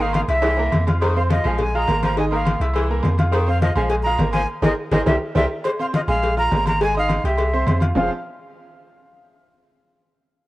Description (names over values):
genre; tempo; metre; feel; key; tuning
latin, salsa; 207 BPM; 4/4; straight; F minor; A4 = 440 Hz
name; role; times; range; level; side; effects
breathy bright jazz flute; melody; 0.0-8.1 s; C5 to Bb5; -24 LUFS; equal; none
clear saxophone section; second line; 0.0-5.4 s; C3 to Ab3; -29 LUFS; equal; none
bright baby grand piano; accompaniment; 0.0-8.1 s; Eb3 to G6; -26 LUFS; right 2 dB; none
punchy sub bass; bass; 0.0-8.1 s; F1 to F2; -22 LUFS; equal; none
congas; percussion; 0.0-8.0 s; none; -24 LUFS; left 1 dB; none
cowbell and bongos; percussion; 0.1-8.0 s; none; -27 LUFS; left 2 dB; none
timbales and agogo bells; percussion; 0.1-8.0 s; none; -29 LUFS; right 2 dB; none
room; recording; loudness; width
light reverb; worn, warbling old tape, cassette tape, warbly pitch drift; -17 LUFS; side -17 dB against mid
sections
0.0-5.6 A section; 5.6-8.0 B section; 8.0-9.1 C section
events
drum fill 0.4-1.0, 4.5-5.6; band accent 4.5-5.6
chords
0.4 C7; 1.0 Fm; 1.6 Bb5; 2.2 Abadd9; 2.8 C7; 3.3 Fm; 3.9 Bb5; 4.5 Abadd9; 5.1 C7; 5.6 Fm; 6.2 Bb5; 6.8 Ab; 7.4 C; 8.0 F5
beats
0.15 0.44 0.73 | 1.02 1.31 1.60 1.89 | 2.17 2.46 2.75 3.04 | 3.33 3.62 3.91 4.20 | 4.49 4.78 5.07 5.36 | 5.65 5.94 6.23 6.52 | 6.81 7.10 7.38 7.67 | 7.96